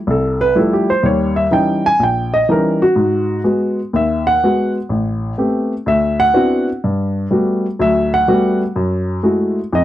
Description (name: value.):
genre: solo jazz.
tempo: 124 BPM.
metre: 4/4.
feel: swing 68% on 8ths.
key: unclear.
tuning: A4 = 440 Hz.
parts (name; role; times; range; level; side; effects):
warm baby grand piano; solo; 0.1-9.8 s; A1 to G#5; -13 LUFS; equal; none.
room: little or no reverb.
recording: dry, close 1970s-style studio recording.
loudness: -13 LUFS.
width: side -13 dB against mid.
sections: 0.0-9.8 A section.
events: grand piano solo 0.0-9.8.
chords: 0.0 Fmaj9; 1.0 D#7b9; 3.0 G#m7; 4.9 Am9; 5.9 D13; 6.8 Gmaj9; 8.8 F#m9.